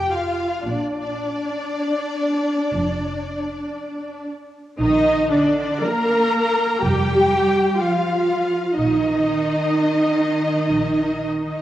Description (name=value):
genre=classical, slow romantic movement for string orchestra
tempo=56-63 BPM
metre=4/4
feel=rubato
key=Bb major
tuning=A4 = 440 Hz
part: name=rich studio violin section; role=melody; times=0.0-11.6 s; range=D5 to Bb5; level=-28 LUFS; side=left 3 dB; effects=none
part: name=rich studio violin section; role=second line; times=0.0-11.6 s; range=D4 to Bb5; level=-26 LUFS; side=left 1 dB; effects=none
part: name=warm studio viola section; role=accompaniment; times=0.0-11.6 s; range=D4 to Bb4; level=-20 LUFS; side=right 1 dB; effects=none
part: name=rich studio double bass section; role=bass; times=0.0-11.5 s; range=F1 to Bb1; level=-28 LUFS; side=right 2 dB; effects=none
part: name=warm studio cello section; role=bass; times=0.0-11.6 s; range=F2 to Bb3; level=-26 LUFS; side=right 1 dB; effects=none
room=wet concert hall reverb, RT60 1.8 s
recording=worn, warbling old tape, cassette tape, warbly pitch drift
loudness=-18 LUFS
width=side -13 dB against mid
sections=0.0-4.8 A section; 4.8-11.6 A section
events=none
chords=0.0 Fsus2; 0.7 Bb; 8.8 Bbsus4